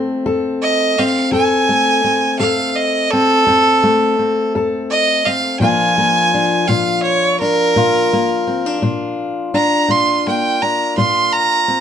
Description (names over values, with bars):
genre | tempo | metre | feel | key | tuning
acoustic country blues, solo or duo | 56 BPM (dotted quarters) | 12/8 | straight | Bb major | A4 = 440 Hz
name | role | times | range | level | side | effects
fingerpicked steel-string acoustic guitar | accompaniment | 0.0-11.8 s | F2 to A4 | -17 LUFS | left 3 dB | none
bright fiddle | melody | 0.6-11.8 s | A4 to C6 | -15 LUFS | right 2 dB | none
room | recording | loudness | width
light reverb | nothing above 10.8 kHz | -13 LUFS | side -8 dB against mid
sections
0.0-11.8 A section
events
fiddle solo 0.0-11.8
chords
0.0 F; 5.6 Bb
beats
0.26 | 1.33 2.41 3.48 4.55 | 5.62 6.69 7.76 8.83 | 9.89 10.96